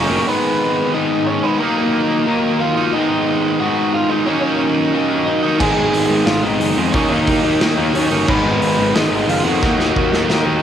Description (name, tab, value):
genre	punk rock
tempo	180 BPM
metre	4/4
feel	straight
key	unclear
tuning	A4 = 440 Hz
part	overdriven semi-hollow guitar	melody	0.0-10.6 s	A#3 to G#5	-20 LUFS	right 2 dB	cassette tape
part	distorted electric guitar	riff	0.0-10.6 s	G#2 to A#4	-20 LUFS	left 7 dB	distortion, cassette tape
part	distorted electric guitar	riff	0.0-0.3, 5.6-10.6 s	G#2 to D#4	-25 LUFS	right 2 dB	none
part	tight distorted guitar	riff	0.0-10.6 s	G#2 to D#4	-20 LUFS	right 8 dB	distortion, cassette tape
part	fuzz picked electric bass	bass	0.0-0.2, 5.6-10.6 s	F#1 to E#2	-21 LUFS	equal	overdrive
part	big rock drum kit	drums	5.6-10.4 s	crash cymbal, hi-hat, kick drum, snare drum	-22 LUFS	equal	cassette tape
room	light reverb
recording	home recording on cassette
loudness	-14 LUFS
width	side -9 dB against mid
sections	0.3-10.6 A section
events	half time 0.3-10.6; drum fill 9.6-10.6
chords	0.3 G#m; 1.6 D#m; 2.9 G#m; 4.3 D#m; 5.6 G#m; 6.9 D#m; 8.3 G#m; 9.6 D#m